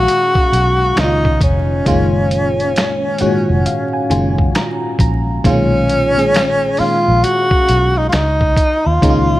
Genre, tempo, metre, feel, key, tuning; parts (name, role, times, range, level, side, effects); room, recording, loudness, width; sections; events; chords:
R&B, neo-soul; 67 BPM; 4/4; swing 63% on 16ths; F# major; A4 = 440 Hz
breathy tenor saxophone; melody; 0.0-9.4 s; C#4 to F#4; -16 LUFS; equal
FM electric piano; accompaniment; 0.0-9.4 s; G#2 to A#5; -18 LUFS; equal; chorus
vintage muted fingered electric bass; bass; 0.0-9.4 s; E#1 to D#2; -17 LUFS; equal
dusty soul sampler-style drum kit; drums; 0.1-9.3 s; finger snaps, hi-hat, kick drum, snare drum; -17 LUFS; equal
light reverb; vinyl crackle; -12 LUFS; side -16 dB against mid
0.0-9.4 A section
FM electric piano fill 2.8-5.4
0.0 B69; 1.0 C#69; 1.9 F#maj9; 5.4 B69; 8.1 C#69